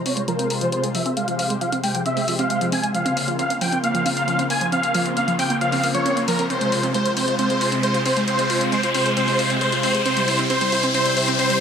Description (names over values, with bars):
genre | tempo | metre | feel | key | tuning
uplifting trance | 135 BPM | 4/4 | straight | F harmonic minor | A4 = 440 Hz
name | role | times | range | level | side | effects
riser | sound effects | 2.7-11.6 s | none | -28 LUFS | left 2 dB | none
dense compressed supersaw | melody | 0.1-11.6 s | Bb4 to Ab5 | -22 LUFS | equal | low-pass filter, dub echo
analog string pad | sustained chords | 0.1-11.5 s | C3 to C5 | -26 LUFS | equal | ensemble chorus
wide unison pluck | arpeggios | 0.1-11.5 s | F3 to F4 | -25 LUFS | right 2 dB | dub echo
electronic hi-hat | drums | 0.1-11.6 s | none | -28 LUFS | left 3 dB | none
room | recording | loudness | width
moderate huge ambient reverb, RT60 3.7 s | none | -18 LUFS | side -7 dB against mid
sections
0.0-11.6 A section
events
build-up 0.0-11.6; filter sweep on supersaw synth 0.0-11.6; filter sweep on synth pluck 0.0-11.6; riser 2.7-11.6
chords
0.0 Fm; 2.9 Bbmadd9; 6.5 Fm; 10.1 C